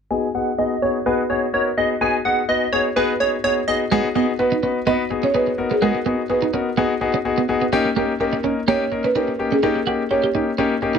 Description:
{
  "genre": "pop",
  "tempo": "126 BPM",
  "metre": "4/4",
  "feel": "straight",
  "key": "G# minor",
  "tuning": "A4 = 442 Hz",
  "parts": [
    { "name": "plucky unison lead", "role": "melody", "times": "0.1-3.8 s", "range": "B4 to G#5", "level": "-20 LUFS", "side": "right 2 dB", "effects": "low-pass filter, digital delay" },
    { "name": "warm concert grand piano", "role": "accompaniment", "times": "0.1-11.0 s", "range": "A#3 to B4", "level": "-21 LUFS", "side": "left 4 dB", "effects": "low-pass filter" },
    { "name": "twelve-string electric guitar", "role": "riff", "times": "3.9-11.0 s", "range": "G#3 to G4", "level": "-22 LUFS", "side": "right 9 dB", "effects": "lush chorus" },
    { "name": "buzzing marimba with soft mallets", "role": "melody", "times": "4.4-11.0 s", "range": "G#4 to D#5", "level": "-22 LUFS", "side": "right 2 dB", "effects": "digital delay" }
  ],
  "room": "moderate studio ambience, RT60 0.5 s",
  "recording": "dark, warm production, faint mains hum",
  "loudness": "-18 LUFS",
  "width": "side -7 dB against mid",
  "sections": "0.1-3.9 A section; 3.9-11.0 B section",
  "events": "filter sweep 0.1-3.9",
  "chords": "0.1 G#m7; 7.7 D#7",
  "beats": "| 0.11 0.58 1.06 1.54 | 2.01 2.49 2.96 3.44 | 3.92 4.39 4.87 5.35 | 5.82 6.30 6.77 7.25 | 7.73 8.20 8.68 9.15 | 9.63 10.11 10.58"
}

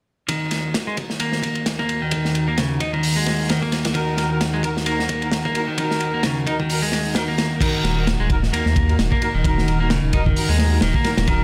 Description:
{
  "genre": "breakbeat, breaks",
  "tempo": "131 BPM",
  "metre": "4/4",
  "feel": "swing 56% on 16ths",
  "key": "Eb minor",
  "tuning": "A4 = 440 Hz",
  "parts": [
    { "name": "lush unison pad", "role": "sustained chords", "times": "0.3-11.4 s", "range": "Eb2 to Bb4", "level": "-29 LUFS", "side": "equal", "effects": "chorus, sidechain pumping" },
    { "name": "electric guitar at the edge of break-up", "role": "riff", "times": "0.3-11.4 s", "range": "Db3 to Eb4", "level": "-26 LUFS", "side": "equal", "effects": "tube saturation, low-pass filter, delay" },
    { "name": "crunchy breakbeat drum kit", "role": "drums", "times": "0.3-11.4 s", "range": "crash cymbal, hi-hat, kick drum, ride cymbal, snare drum", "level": "-25 LUFS", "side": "equal", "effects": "high-pass filter on kick, high-pass filter on cymbals, high-pass filter on hats, high-pass filter on snare, high-pass filter on room" },
    { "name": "warm brass ensemble", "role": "stabs", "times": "4.0-11.4 s", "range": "Eb4 to Bb4", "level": "-30 LUFS", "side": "equal", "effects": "delay" },
    { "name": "swell", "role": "sound effects", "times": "7.0-7.6 s", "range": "none", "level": "-37 LUFS", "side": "equal", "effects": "none" },
    { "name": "saturated sub bass", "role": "bass", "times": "7.8-11.4 s", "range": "Eb1 to Eb2", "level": "-22 LUFS", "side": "equal", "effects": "none" }
  ],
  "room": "light reverb",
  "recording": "none",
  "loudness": "-20 LUFS",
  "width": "mono",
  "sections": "0.3-7.6 A section; 7.6-11.4 B section",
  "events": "kick drops out 6.7-7.6",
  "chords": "0.3 Ebm",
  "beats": "| 0.29 0.74 1.20 1.66 | 2.12 2.58 3.03 3.49 | 3.95 4.41 4.87 5.32 | 5.78 6.24 6.70 7.16 | 7.61 8.07 8.53 8.99 | 9.45 9.90 10.36 10.82 | 11.28"
}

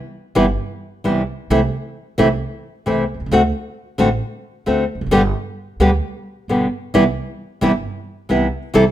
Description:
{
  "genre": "tango",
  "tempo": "132 BPM",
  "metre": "4/4",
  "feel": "rubato",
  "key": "C major",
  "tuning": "A4 = 437 Hz",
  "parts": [
    { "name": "nylon-string guitar", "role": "accompaniment", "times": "0.4-8.8 s", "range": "B2 to A4", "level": "-16 LUFS", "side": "equal", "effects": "none" },
    { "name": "upright bass", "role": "bass", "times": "0.4-8.9 s", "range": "E1 to D2", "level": "-23 LUFS", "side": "right 2 dB", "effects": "none" }
  ],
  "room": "light reverb",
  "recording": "close, detailed microphones",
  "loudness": "-16 LUFS",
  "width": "side -12 dB against mid",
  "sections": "0.0-8.9 A section",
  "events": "none",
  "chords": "0.0 Cmaj7; 1.5 Am/C; 3.3 D7; 5.1 G; 6.9 Cmaj7",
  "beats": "0.13 0.59 1.04 | 1.50 1.95 2.41 2.86 | 3.31 3.77 4.22 4.67 | 5.12 5.57 6.03 6.48 | 6.94 7.39 7.84 8.29 | 8.74"
}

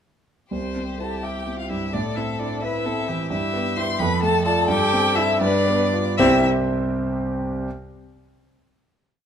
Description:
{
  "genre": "quick classical-period movement for piano quartet",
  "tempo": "75-88 BPM (dotted quarters)",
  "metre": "6/8",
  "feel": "rubato",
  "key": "C major",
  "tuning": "A4 = 439 Hz",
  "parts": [
    { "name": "clear violin", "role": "melody", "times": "0.5-6.5 s", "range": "C5 to C6", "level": "-25 LUFS", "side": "left 6 dB", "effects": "none" },
    { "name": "rich cello", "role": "second line", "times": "0.5-6.5 s", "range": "C4 to C5", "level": "-28 LUFS", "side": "right 8 dB", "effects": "none" },
    { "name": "warm violin", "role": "second line", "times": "0.5-6.5 s", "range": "C4 to B4", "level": "-27 LUFS", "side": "left 4 dB", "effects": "none" },
    { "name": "warm grand piano", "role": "accompaniment", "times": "0.5-7.7 s", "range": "C2 to G5", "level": "-22 LUFS", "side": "right 1 dB", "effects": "none" }
  ],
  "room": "moderate recital hall reverb, RT60 1.7 s",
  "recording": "close, detailed microphones",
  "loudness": "-20 LUFS",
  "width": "side -8 dB against mid",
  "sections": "0.5-6.2 A section; 6.2-7.7 final chord",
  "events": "none",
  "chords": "0.5 C; 1.9 Am; 3.3 Em/G; 4.0 Dm/F; 4.7 C/G; 5.4 G7; 6.2 C5",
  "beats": "| 0.52 1.23 | 1.94 2.63 | 3.31 4.00 | 4.69 5.42 | 6.19 6.92"
}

